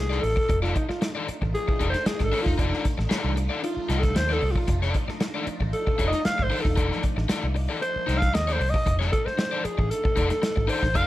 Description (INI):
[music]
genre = funk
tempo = 115 BPM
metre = 4/4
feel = straight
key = F mixolydian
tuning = A4 = 440 Hz
[part]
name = breathy alto saxophone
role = melody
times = 0.0-11.1 s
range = Eb4 to F5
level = -27 LUFS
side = equal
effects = none
[part]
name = phased string machine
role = sustained chords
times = 0.0-11.1 s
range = F3 to Eb4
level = -35 LUFS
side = equal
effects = ensemble chorus, phaser
[part]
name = vintage muted fingered electric bass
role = bass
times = 0.0-11.1 s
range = E1 to Eb2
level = -27 LUFS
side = equal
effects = none
[part]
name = crunchy overdriven guitar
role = accompaniment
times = 0.1-11.1 s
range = Eb4 to Eb5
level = -31 LUFS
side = left 5 dB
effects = none
[part]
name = warm soul drum kit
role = drums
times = 0.1-11.1 s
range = hi-hat, kick drum, snare drum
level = -27 LUFS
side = equal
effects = none
[sound]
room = light reverb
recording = none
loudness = -22 LUFS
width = side -15 dB against mid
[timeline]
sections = 0.0-11.1 A section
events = alto saxophone solo 0.0-11.1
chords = 0.0 F6